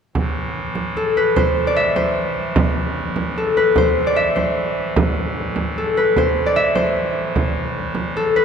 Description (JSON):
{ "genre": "medieval dance", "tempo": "100 BPM (dotted quarters)", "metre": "6/8", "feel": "straight", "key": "A minor", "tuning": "A4 = 438 Hz", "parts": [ { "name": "pipe organ, clarinet reed", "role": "drone", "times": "0.2-8.4 s", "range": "A2 to E3", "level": "-26 LUFS", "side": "equal", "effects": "none" }, { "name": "frame drum", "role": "percussion", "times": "0.2-8.4 s", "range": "none", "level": "-22 LUFS", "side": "right 2 dB", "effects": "none" }, { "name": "concert harp", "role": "melody", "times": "1.0-8.4 s", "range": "A4 to E5", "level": "-18 LUFS", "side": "left 1 dB", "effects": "none" } ], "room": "wet church reverb, RT60 3.4 s", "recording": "none", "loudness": "-16 LUFS", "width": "side -7 dB against mid", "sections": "0.2-8.4 A section", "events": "none", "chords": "none", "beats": "| 0.16 0.76 | 1.36 1.96 | 2.56 3.16 | 3.76 4.36 | 4.96 5.56 | 6.16 6.76 | 7.36 7.96" }